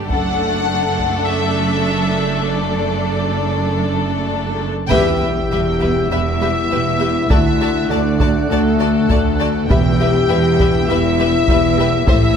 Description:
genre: cinematic, epic orchestral film score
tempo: 100 BPM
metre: 4/4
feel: straight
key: E minor from 4.9 s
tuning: A4 = 442 Hz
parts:
  - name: warm studio violin section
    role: second line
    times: 0.0-12.2 s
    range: A4 to A5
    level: -24 LUFS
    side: left 4 dB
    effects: none
  - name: rich symphonic viola section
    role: accompaniment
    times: 0.0-12.2 s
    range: D3 to A4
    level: -25 LUFS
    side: right 2 dB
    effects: none
  - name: rich symphonic cello section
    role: bass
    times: 0.0-12.4 s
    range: D2 to A2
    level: -22 LUFS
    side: right 4 dB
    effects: none
  - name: warm symphonic double bass section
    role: bass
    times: 0.0-12.4 s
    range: E1 to D2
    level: -22 LUFS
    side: right 4 dB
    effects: none
  - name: warm symphonic violin section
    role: melody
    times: 0.1-12.4 s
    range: A4 to G5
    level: -24 LUFS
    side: left 4 dB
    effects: none
  - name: solo taiko drums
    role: drums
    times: 0.1-1.3, 4.9-12.4 s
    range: none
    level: -19 LUFS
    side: equal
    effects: none
  - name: dark French horn section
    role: sustained chords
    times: 4.9-12.4 s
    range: A3 to G4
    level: -19 LUFS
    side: left 5 dB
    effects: none
  - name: warm woodwind section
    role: sustained chords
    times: 4.9-12.4 s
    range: A3 to F#5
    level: -24 LUFS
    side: left 1 dB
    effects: none
  - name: timpani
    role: percussion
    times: 4.9-5.8, 9.7-10.6 s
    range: E2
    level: -24 LUFS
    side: left 1 dB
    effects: none
  - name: sub drop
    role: sound effects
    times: 5.0-7.3 s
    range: none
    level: -29 LUFS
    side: equal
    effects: none
room: moderate scoring stage reverb, RT60 1.6 s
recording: none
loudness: -14 LUFS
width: side -7 dB against mid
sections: 0.0-4.9 A section; 4.9-12.4 B section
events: band accent 4.9-5.5; impact 4.9-7.3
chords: 0.1 D/F#; 4.9 Em; 7.3 D; 9.7 Em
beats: | 0.10 0.69 1.29 1.89 | 2.49 3.10 3.70 4.31 | 4.92 5.52 6.12 6.71 | 7.31 7.91 8.51 9.10 | 9.70 10.30 10.89 11.48 | 12.08

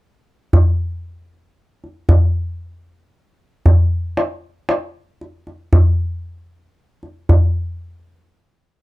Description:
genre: arabic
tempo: 115 BPM (eighths)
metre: 10/8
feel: straight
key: none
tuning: none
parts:
  - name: darbuka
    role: percussion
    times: 0.5-7.5 s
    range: none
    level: -13 LUFS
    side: equal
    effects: none
room: light reverb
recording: dark, warm production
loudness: -15 LUFS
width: side -20 dB against mid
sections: 0.5-8.8 A section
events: none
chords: none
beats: | 0.53 1.05 1.57 2.09 2.61 3.13 3.65 4.17 4.69 5.21 | 5.74 6.25 6.78 7.30

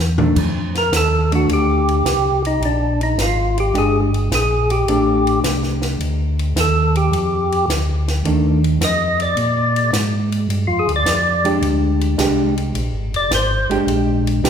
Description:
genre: soul jazz organ trio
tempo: 107 BPM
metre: 4/4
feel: swing 69% on 8ths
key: unclear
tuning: A4 = 441 Hz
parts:
  - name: mellow tonewheel organ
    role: bass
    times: 0.0-14.5 s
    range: F1 to Bb2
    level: -19 LUFS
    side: equal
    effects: overdrive, chorus vibrato, slow rotary speaker
  - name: hollow-body jazz guitar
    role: accompaniment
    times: 0.2-14.5 s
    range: Eb3 to G4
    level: -20 LUFS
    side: equal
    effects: none
  - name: compact cocktail drum kit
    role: drums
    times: 0.2-14.5 s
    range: crash cymbal, hi-hat, kick drum, ride cymbal, snare drum, toms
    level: -25 LUFS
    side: equal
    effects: none
  - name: percussive tonewheel organ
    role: melody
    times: 0.8-13.7 s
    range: D4 to Eb5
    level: -19 LUFS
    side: equal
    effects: slow rotary speaker, overdrive
room: wet recital hall reverb, RT60 1.7 s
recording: recorded in a church or concert hall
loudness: -15 LUFS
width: side -8 dB against mid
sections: 0.4-14.5 A section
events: drum fill 0.0-0.4; tonewheel organ solo 0.4-14.5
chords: 0.4 F13; 2.6 Bb6; 4.9 F13; 9.4 Bb13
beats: | 0.36 0.93 1.49 2.05 | 2.62 3.18 3.74 4.31 | 4.87 5.43 6.00 6.56 | 7.12 7.68 8.25 8.81 | 9.37 9.93 10.50 11.06 | 11.62 12.18 12.75 13.31 | 13.87 14.43

